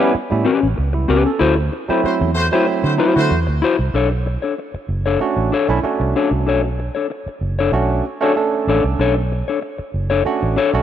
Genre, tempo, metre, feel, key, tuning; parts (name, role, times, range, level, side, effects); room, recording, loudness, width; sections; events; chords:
funk; 95 BPM; 4/4; straight; A4 = 439 Hz
mellow electric guitar; accompaniment; 0.0-10.8 s; C#4 to C#5; -19 LUFS; left 5 dB
barky tine electric piano; stabs; 0.0-10.8 s; F#3 to A4; -20 LUFS; right 5 dB; overdrive, wide subtle chorus
vintage muted fingered electric bass; bass; 0.1-10.8 s; F#1 to D3; -19 LUFS; right 1 dB
warm horn section; second line; 2.0-3.4 s; A3 to C5; -24 LUFS; equal
light reverb; rough home demo mix; -16 LUFS; side -10 dB against mid
0.0-3.9 A section; 3.9-10.8 B section
band accent 1.4-3.9
0.0 A9; 1.4 D9; 3.9 Bm9